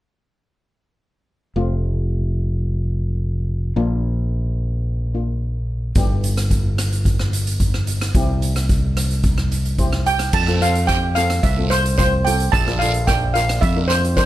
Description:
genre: calypso.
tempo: 109 BPM.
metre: 4/4.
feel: straight.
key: F major.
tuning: A4 = 441 Hz.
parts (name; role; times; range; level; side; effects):
steel pan; accompaniment; 1.6-14.3 s; A3 to G5; -26 LUFS; left 2 dB; none.
modern bright fingered electric bass; bass; 1.6-14.3 s; F1 to F2; -20 LUFS; equal; none.
street-band drum kit; drums; 6.0-14.3 s; crash cymbal, hi-hat, kick drum, rim click; -21 LUFS; equal; none.
steel pan; melody; 10.1-14.3 s; C5 to A5; -20 LUFS; right 2 dB; none.
guiro; percussion; 10.3-14.3 s; none; -30 LUFS; right 5 dB; none.
room: light reverb.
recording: lossy compression artefacts.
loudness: -17 LUFS.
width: side -14 dB against mid.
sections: 1.6-10.3 A section; 10.3-14.3 B section.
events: steel pan fill 9.5-10.3.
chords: 1.6 F; 3.8 Bb; 6.0 G; 8.2 C; 10.3 F; 12.5 Bb.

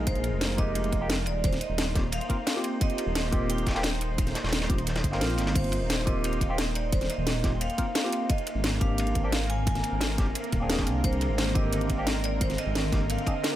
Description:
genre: liquid drum and bass.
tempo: 175 BPM.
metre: 4/4.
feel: straight.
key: unclear.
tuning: A4 = 440 Hz.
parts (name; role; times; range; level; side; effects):
barky tine electric piano; accompaniment; 0.0-13.6 s; D3 to Bb4; -33 LUFS; equal; overdrive, phaser, ping-pong delay.
lush unison pad; sustained chords; 0.0-13.6 s; D3 to C5; -36 LUFS; right 1 dB; chorus.
dark detuned saw bass; bass; 0.0-13.2 s; Eb1 to C2; -30 LUFS; equal; none.
vibraphone with hard mallets; melody; 0.1-13.6 s; C5 to Ab5; -35 LUFS; right 2 dB; dub echo.
crunchy breakbeat drum kit; drums; 0.1-13.5 s; ride cymbal, snare drum; -37 LUFS; equal; high-pass filter on cymbals, high-pass filter on snare, high-pass filter on room.
drum and bass drum kit; drums; 0.1-13.5 s; crash cymbal, hi-hat, snare drum; -31 LUFS; equal; overdrive.
electronic kick drum; drums; 0.1-13.3 s; none; -28 LUFS; equal; none.
room: light reverb, studio ambience.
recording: none.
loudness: -25 LUFS.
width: side -13 dB against mid.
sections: 0.0-13.6 A section.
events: none.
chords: 0.0 Fm11; 1.3 Eb6; 8.3 Abmaj9#11.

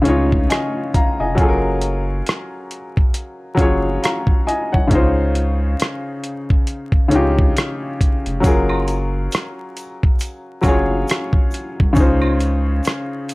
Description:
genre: lo-fi hip hop.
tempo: 68 BPM.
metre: 4/4.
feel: swing 58% on 16ths.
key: Gb lydian.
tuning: A4 = 440 Hz.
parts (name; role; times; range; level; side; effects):
warm upright piano; accompaniment; 0.0-13.3 s; Db3 to Bb5; -20 LUFS; left 1 dB; none.
saturated sub bass; bass; 0.1-12.8 s; F1 to Db2; -20 LUFS; equal; none.
dusty soul sampler-style drum kit; drums; 0.1-13.3 s; hi-hat, kick drum, rim click; -17 LUFS; equal; none.
egg shaker and woodblock; percussion; 8.4-13.3 s; none; -32 LUFS; right 4 dB; none.
room: light reverb.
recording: vinyl crackle.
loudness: -15 LUFS.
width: side -22 dB against mid.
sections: 0.0-13.3 A section.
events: none.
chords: 0.0 Dbmaj9; 1.4 Gbmaj9; 4.9 Dbmaj9; 8.4 Gbmaj9; 12.0 Dbmaj9.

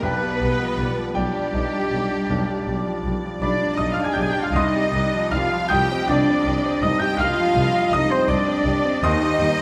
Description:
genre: classical.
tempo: 54 BPM (dotted quarters).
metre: 12/8.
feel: rubato.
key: unclear.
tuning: A4 = 440 Hz.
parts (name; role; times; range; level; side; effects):
bright grand piano; melody; 0.0-9.6 s; B1 to Ab6; -26 LUFS; equal; none.
bright symphonic violin section; melody; 0.0-9.6 s; G4 to Ab5; -37 LUFS; equal; none.
bright oboe; second line; 0.0-9.6 s; G4 to Ab5; -34 LUFS; equal; none.
clear clarinet; second line; 0.0-9.6 s; G4 to Ab5; -34 LUFS; equal; none.
silver concert flute; second line; 0.0-9.6 s; G4 to Ab5; -32 LUFS; equal; none.
warm symphonic violin section; second line; 0.0-9.6 s; G4 to Ab5; -36 LUFS; equal; none.
rich studio viola section; accompaniment; 0.0-9.6 s; C5 to Eb5; -36 LUFS; equal; none.
dark French horn section; sustained chords; 0.0-9.6 s; G3 to Ab4; -30 LUFS; equal; none.
mellow trumpet; stabs; 0.0-9.6 s; G4 to Ab5; -33 LUFS; equal; none.
mellow tuba; bass; 0.0-9.5 s; B1 to Eb2; -32 LUFS; equal; none.
rich symphonic cello section; bass; 0.0-9.6 s; G3 to Ab4; -33 LUFS; equal; none.
rich symphonic double bass section; bass; 0.1-9.5 s; B1 to Eb2; -31 LUFS; equal; none.
room: moderate scoring stage reverb, RT60 2.0 s.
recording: none.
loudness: -21 LUFS.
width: mono.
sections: 0.0-9.6 A section.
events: none.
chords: 0.0 G/B; 4.5 Cm; 9.0 Cm/Eb.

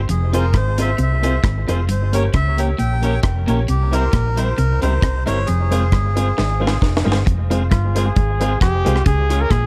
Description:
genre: ska.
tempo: 134 BPM.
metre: 4/4.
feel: swing 54% on 8ths.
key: F harmonic minor.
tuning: A4 = 436 Hz.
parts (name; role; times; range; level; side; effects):
hollow-body short-scale fingered electric bass; bass; 0.0-9.7 s; F1 to Db2; -21 LUFS; equal; none.
melodica; melody; 0.1-6.8 s; G4 to G5; -27 LUFS; equal; analog delay.
clean electric guitar; riff; 0.1-9.6 s; F2 to Db3; -29 LUFS; equal; spring reverb.
deep reggae drum kit; drums; 0.1-9.6 s; hi-hat, kick drum, rim click, snare drum; -22 LUFS; equal; none.
clean electric guitar; accompaniment; 0.3-9.5 s; G3 to C5; -28 LUFS; equal; harmonic tremolo, analog delay.
honky-tonk upright piano; stabs; 0.3-9.4 s; C4 to Db5; -30 LUFS; equal; analog delay.
warm trumpet; melody; 7.7-9.7 s; F4 to Bb4; -24 LUFS; equal; analog delay.
room: light reverb, studio reverb.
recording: none.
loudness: -18 LUFS.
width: mono.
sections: 0.0-7.3 A section; 7.3-9.7 B section.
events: drum fill 6.4-7.3; trumpet solo 7.3-9.7.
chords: 0.1 Fm; 1.9 Gdim; 3.7 C7; 5.5 Fm; 9.1 Db.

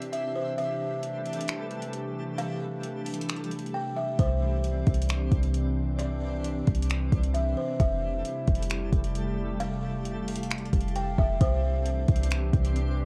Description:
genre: hip hop, atmospheric cloud-rap.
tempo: 133 BPM.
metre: 4/4.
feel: half-time.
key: C major.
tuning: A4 = 442 Hz.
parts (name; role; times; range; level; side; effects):
buzzing kalimba; melody; 0.0-12.7 s; C5 to G5; -37 LUFS; equal; tape echo.
warbly tape-like pad; sustained chords; 0.0-13.1 s; C3 to F5; -36 LUFS; equal; chorus, built-in reverb, sidechain pumping.
smooth R&B drum kit; drums; 0.0-12.9 s; finger snaps, hi-hat, kick drum; -30 LUFS; equal; none.
twinkling granular texture; texture; 0.0-13.1 s; E3 to E5; -44 LUFS; equal; built-in reverb.
clean 808-style bass; bass; 4.2-13.1 s; F1 to C2; -30 LUFS; equal; none.
room: little or no reverb.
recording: worn, warbling old tape, cassette tape, warbly pitch drift.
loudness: -28 LUFS.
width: mono.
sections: 0.0-11.4 A section; 11.4-13.1 B section.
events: break 0.0-4.2; drums muted 3.7-4.2.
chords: 0.0 Cadd9; 0.6 Fmaj9; 4.2 Cadd9; 7.8 Fmaj9; 11.4 Cadd9.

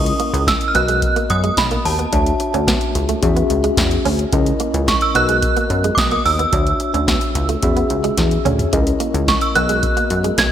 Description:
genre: early-eighties boogie funk.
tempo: 109 BPM.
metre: 4/4.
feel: straight.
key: unclear.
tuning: A4 = 440 Hz.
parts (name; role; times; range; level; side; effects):
synth chime; melody; 0.0-10.5 s; A5 to G#6; -19 LUFS; right 3 dB; ensemble chorus.
mellow tine electric piano; accompaniment; 0.0-10.5 s; B3 to E5; -22 LUFS; left 4 dB; medium stereo tremolo.
direct-recorded clean electric guitar; riff; 0.0-10.3 s; G#3 to D4; -25 LUFS; right 6 dB; ensemble chorus.
chorused synth bass; bass; 0.0-10.5 s; B1 to F#2; -20 LUFS; equal; none.
electro analog drum machine; drums; 0.1-10.5 s; hi-hat, kick drum, snare drum, toms; -20 LUFS; equal; none.
room: moderate lush hall reverb, RT60 2.1 s.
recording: bright 1980s-style digital production.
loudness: -14 LUFS.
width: side -10 dB against mid.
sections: 0.0-10.5 A section.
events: drum fill 8.2-8.7.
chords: 0.0 C#m69; 0.7 Bmaj7; 2.1 Dmaj9; 3.2 E69; 4.3 C#m69; 5.2 Bmaj7; 6.5 Dmaj9; 7.6 E69; 8.7 C#m69; 9.6 Bmaj7.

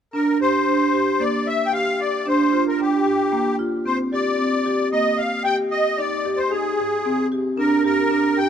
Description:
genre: contemporary instrumental, contemporary.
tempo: 113 BPM.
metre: 7/4.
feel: straight.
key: unclear.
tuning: A4 = 439 Hz.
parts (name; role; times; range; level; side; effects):
musette accordion; melody; 0.1-8.5 s; G4 to G5; -21 LUFS; left 2 dB; none.
marimba with medium hard mallets; arpeggios; 0.1-8.5 s; Bb3 to Ab4; -20 LUFS; right 2 dB; none.
room: wet plate reverb, RT60 3.0 s.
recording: heard from further back in the room.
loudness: -18 LUFS.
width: side -8 dB against mid.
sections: 0.1-8.5 A section.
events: none.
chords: 0.1 Bb6; 3.9 Abmaj9; 7.6 Bb6.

